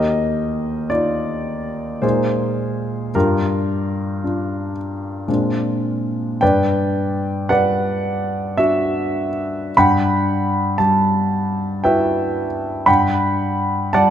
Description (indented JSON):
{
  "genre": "classical, impressionist solo piano",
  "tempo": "49-59 BPM",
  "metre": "3/4",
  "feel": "rubato",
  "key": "unclear",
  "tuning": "A4 = 439 Hz",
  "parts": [
    { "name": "clear grand piano", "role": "solo", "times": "0.0-14.1 s", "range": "Eb2 to B5", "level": "-17 LUFS", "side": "equal", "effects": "none" }
  ],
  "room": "moderate scoring stage reverb, RT60 1.8 s",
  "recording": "close, detailed microphones",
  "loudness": "-17 LUFS",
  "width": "side -10 dB against mid",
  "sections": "0.0-14.1 A section",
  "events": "none",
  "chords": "0.0 Ebadd9; 2.0 Bb9sus4; 3.1 Gm7; 5.3 Bb9; 6.4 Gmaj7; 9.8 Emadd9/G; 12.9 Gmaj9"
}